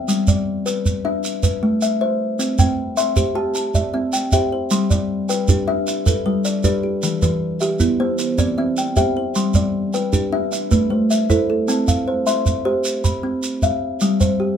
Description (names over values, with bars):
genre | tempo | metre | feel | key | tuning
southern african traditional, mbira-style interlocking cycle | 103 BPM (dotted quarters) | 12/8 | straight | C major | A4 = 440 Hz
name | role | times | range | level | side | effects
kalimba | arpeggios | 0.0-14.6 s | E3 to C6 | -20 LUFS | left 2 dB | none
shekere | percussion | 0.1-14.4 s | none | -20 LUFS | right 3 dB | none
kalimba | arpeggios | 2.6-12.1 s | E3 to C6 | -23 LUFS | right 4 dB | none
room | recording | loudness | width
moderate small room reverb, RT60 0.5 s | minimal, uncompressed stereo recording | -17 LUFS | side -8 dB against mid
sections
0.0-11.7 A section; 11.7-14.6 B section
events
none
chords
0.1 G; 1.2 Am; 2.4 C; 4.7 G; 7.0 Em; 8.2 C; 9.4 G; 10.5 Am; 11.7 C; 14.0 N.C.